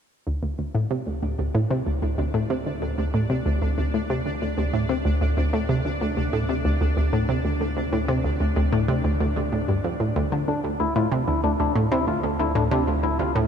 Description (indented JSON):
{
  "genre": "ambient, sequencer-driven space music",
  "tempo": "94 BPM",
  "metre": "4/4",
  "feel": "straight",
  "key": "unclear",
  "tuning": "A4 = 440 Hz",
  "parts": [
    { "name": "analog pluck", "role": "riff", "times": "0.3-13.5 s", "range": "D2 to D3", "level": "-22 LUFS", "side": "equal", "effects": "chorus, tape echo" },
    { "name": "warm sub bass", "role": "bass", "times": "0.3-13.5 s", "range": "D2", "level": "-31 LUFS", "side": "equal", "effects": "none" },
    { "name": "pulsing gated texture", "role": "texture", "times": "1.0-10.5 s", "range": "D4 to D5", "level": "-34 LUFS", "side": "right 1 dB", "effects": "chorus, built-in reverb" },
    { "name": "clean electric guitar", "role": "arpeggios", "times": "10.5-13.3 s", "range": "D4 to F4", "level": "-25 LUFS", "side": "left 4 dB", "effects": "auto-pan, low-pass filter, tape echo" }
  ],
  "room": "moderate huge ambient reverb, RT60 8.5 s",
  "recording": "none",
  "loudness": "-21 LUFS",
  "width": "side -8 dB against mid",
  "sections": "0.3-10.5 A section; 10.5-13.5 B section",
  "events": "fade-in on sub bass 0.3-10.5; fade-in on synth texture 0.3-10.5; filter sweep on synth arpeggio sound 0.3-10.5; filter sweep on clean electric guitar 10.5-13.5",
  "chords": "0.3 D5; 10.5 Dsus2"
}